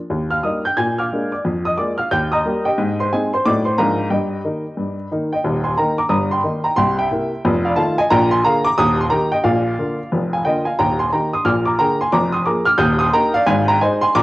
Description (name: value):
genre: jazz, stride piano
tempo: 180 BPM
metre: 4/4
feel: swing 62% on 8ths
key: Eb major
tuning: A4 = 439 Hz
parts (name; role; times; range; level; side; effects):
- clear upright piano; solo; 0.1-14.2 s; Eb1 to Ab6; -16 LUFS; equal; none
room: moderate spring reverb, RT60 1.9 s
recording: home recording on cassette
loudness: -16 LUFS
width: side -18 dB against mid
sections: 0.0-5.5 A section; 5.5-14.2 A section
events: none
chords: 0.1 Eb; 0.8 Bb7; 1.4 Bb7/F; 2.1 Eb; 2.8 Abmaj7; 3.4 Adim7; 3.8 Bb7/Ab; 4.1 Eb/G; 5.5 Eb; 6.1 Eb/G; 6.8 C7; 7.5 F7; 8.1 Bb7; 8.8 Eb; 9.5 Bb; 10.8 Eb; 11.5 Bb7; 12.1 Bb7/F; 12.8 Eb; 13.5 Ab